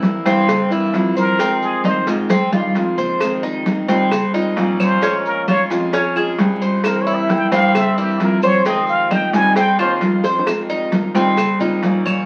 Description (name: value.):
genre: latin, Cuban son and guajira.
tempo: 132 BPM.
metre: 4/4.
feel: straight.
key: F minor.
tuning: A4 = 440 Hz.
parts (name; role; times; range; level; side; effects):
trumpet with plunger mute; melody; 0.0-9.9 s; G4 to Ab5; -21 LUFS; equal; none.
picked steel-string acoustic guitar; accompaniment; 0.0-12.3 s; C3 to F4; -27 LUFS; equal; none.
Cuban tres; arpeggios; 0.0-12.3 s; C4 to Db5; -22 LUFS; equal; none.
clear grand piano; bass; 0.0-12.3 s; Bb1 to Ab2; -23 LUFS; equal; none.
congas; percussion; 0.0-12.3 s; none; -23 LUFS; equal; none.
cowbell and bongos; percussion; 0.0-12.1 s; none; -28 LUFS; equal; none.
maracas; percussion; 0.0-12.3 s; none; -43 LUFS; equal; none.
claves; percussion; 3.2-12.3 s; none; -30 LUFS; equal; none.
room: wet studio reverb, RT60 0.5 s.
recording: very old 78 rpm record, vinyl crackle.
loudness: -17 LUFS.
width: mono.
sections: 0.0-10.5 A section; 10.5-12.3 B section.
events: muted trumpet solo 0.0-10.5; drum fill 2.3-3.2, 10.2.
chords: 0.0 C7; 1.4 Fm7; 5.0 Bbm7; 6.8 C7; 8.7 Fm7.